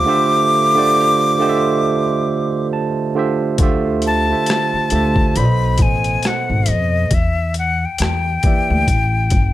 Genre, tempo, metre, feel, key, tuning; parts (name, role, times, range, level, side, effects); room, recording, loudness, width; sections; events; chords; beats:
R&B, neo-soul; 68 BPM; 4/4; swing 58% on 16ths; A4 = 440 Hz
breathy bright jazz flute; melody; 0.0-9.5 s; D#5 to D6; -18 LUFS; left 2 dB
barky tine electric piano; accompaniment; 0.0-8.9 s; B2 to A5; -18 LUFS; right 4 dB; overdrive
upright bass; bass; 0.0-9.5 s; G1 to F2; -18 LUFS; left 1 dB
boom bap sampler-style drum kit; drums; 3.6-9.5 s; hi-hat, kick drum, rim click; -18 LUFS; left 1 dB; overdrive
light reverb; -14 LUFS; side -14 dB against mid
0.0-3.6 A section; 3.6-9.5 B section
break 0.1-3.6; tine electric piano fill 2.3-3.6
0.0 Dm11; 5.3 B7b9; 7.1 Em7b5; 8.9 A7(no3)
| 0.05 0.94 1.82 2.70 | 3.58 4.47 5.35 6.23 | 7.11 8.00 8.88